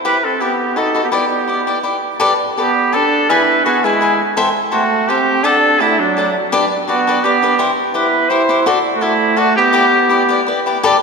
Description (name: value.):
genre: mexican folk, mariachi.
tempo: 167 BPM.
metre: 3/4.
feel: swing 53% on 8ths, rubato.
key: G major.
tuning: A4 = 440 Hz.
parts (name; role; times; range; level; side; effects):
mellow trumpet; second line; 0.0-10.4 s; F#3 to E4; -20 LUFS; right 3 dB; none.
cavaquinho; accompaniment; 0.0-11.0 s; D4 to G#5; -16 LUFS; left 2 dB; none.
clear trumpet; melody; 0.1-10.4 s; D4 to C5; -15 LUFS; right 1 dB; none.
room: wet church reverb, RT60 3.6 s.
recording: recorded in a church or concert hall.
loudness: -12 LUFS.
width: side -4 dB against mid.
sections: 0.0-2.2 A section; 2.2-10.8 B section.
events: none.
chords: 0.1 Em; 0.8 B7; 1.1 Em7; 2.2 Gadd9; 3.3 E; 4.4 Am7; 5.4 D; 6.5 G; 7.6 C; 8.7 Dadd9; 9.7 G6.